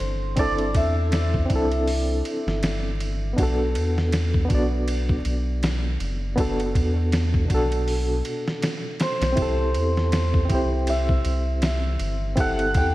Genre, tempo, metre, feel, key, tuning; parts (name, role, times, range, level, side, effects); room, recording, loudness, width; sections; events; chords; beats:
trip hop; 80 BPM; 4/4; swing 58% on 16ths; A4 = 440 Hz
hammered dulcimer; melody; 0.0-3.1, 9.0-12.9 s; C5 to G5; -28 LUFS; equal; tape echo
barky reed electric piano; accompaniment; 0.0-12.9 s; B2 to D5; -26 LUFS; equal; overdrive, fast tremolo, vintage 12-bit sampler grit, tape echo
round analog bass; bass; 0.0-12.9 s; F#1 to E2; -24 LUFS; equal; tube saturation
trip hop sampler-style drum kit; drums; 0.0-12.9 s; hi-hat, kick drum, ride cymbal, snare drum; -26 LUFS; equal; small room reverb
moderate lush hall reverb, RT60 2.3 s; dreamy mix soaked in reverb, vinyl crackle; -20 LUFS; side -17 dB against mid
0.0-12.9 A section
0.0 C69; 3.4 Bm7; 9.4 Am7
| 0.38 1.13 1.88 2.63 | 3.38 4.13 4.88 5.63 | 6.38 7.13 7.88 8.63 | 9.38 10.13 10.88 11.63 | 12.38